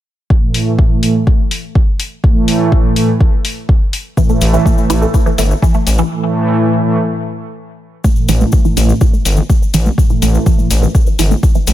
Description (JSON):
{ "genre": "melodic techno", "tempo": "124 BPM", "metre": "4/4", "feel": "straight", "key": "unclear", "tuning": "A4 = 445 Hz", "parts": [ { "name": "brassy analog pad", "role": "stabs", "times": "0.3-10.8 s", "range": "A2 to A3", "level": "-16 LUFS", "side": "right 1 dB", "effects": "chorus, sidechain pumping, ping-pong delay" }, { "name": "electronic kick drum", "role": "drums", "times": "0.3-11.5 s", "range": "none", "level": "-11 LUFS", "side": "equal", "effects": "overdrive" }, { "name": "electronic hi-hat", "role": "drums", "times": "0.5-11.7 s", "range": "none", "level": "-20 LUFS", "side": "left 4 dB", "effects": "overdrive" }, { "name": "wide unison pluck", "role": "arpeggios", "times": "4.2-11.7 s", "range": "E3 to A3", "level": "-18 LUFS", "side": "equal", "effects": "phaser, sidechain pumping, ping-pong delay" }, { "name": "cabasa", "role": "percussion", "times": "4.2-11.7 s", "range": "none", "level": "-26 LUFS", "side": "left 6 dB", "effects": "none" }, { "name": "gritty driven synth bass", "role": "bass", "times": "4.4-11.7 s", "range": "G1 to A1", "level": "-13 LUFS", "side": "equal", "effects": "sidechain pumping" } ], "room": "light reverb, digital ambience", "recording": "none", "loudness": "-10 LUFS", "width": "side -13 dB against mid", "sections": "0.3-8.0 A section; 8.0-11.7 B section", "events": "filter sweep on analog synth pad 0.3-8.0; break 6.1-8.0; filter sweep on synth arpeggio sound 8.0-11.7", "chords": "0.3 A5" }